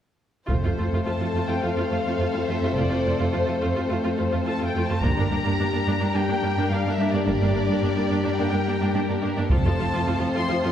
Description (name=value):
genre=cinematic, epic orchestral film score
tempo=106 BPM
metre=4/4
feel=straight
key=F major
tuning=A4 = 440 Hz
part: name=dark symphonic violin section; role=melody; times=0.5-10.7 s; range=C5 to C6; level=-30 LUFS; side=left 3 dB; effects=none
part: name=warm symphonic violin section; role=second line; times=0.5-10.7 s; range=G4 to C5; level=-31 LUFS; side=left 2 dB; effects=none
part: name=rich symphonic viola section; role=accompaniment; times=0.5-10.7 s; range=F3 to F4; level=-29 LUFS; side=right 1 dB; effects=none
part: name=dark French horn section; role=sustained chords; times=0.5-10.7 s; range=G3 to D4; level=-27 LUFS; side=left 3 dB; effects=none
part: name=rich symphonic cello section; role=bass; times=0.5-10.7 s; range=F2 to G2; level=-27 LUFS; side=right 2 dB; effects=none
part: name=rich symphonic double bass section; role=bass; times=0.5-9.6 s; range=F1 to G1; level=-29 LUFS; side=right 2 dB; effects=none
part: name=taiko ensemble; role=drums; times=0.5-1.6, 5.0-10.6 s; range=none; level=-26 LUFS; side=equal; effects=none
room=wet scoring stage reverb, RT60 2.1 s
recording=heard from further back in the room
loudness=-21 LUFS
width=side -10 dB against mid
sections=0.5-10.7 A section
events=none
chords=0.5 F; 5.0 Gm; 9.5 F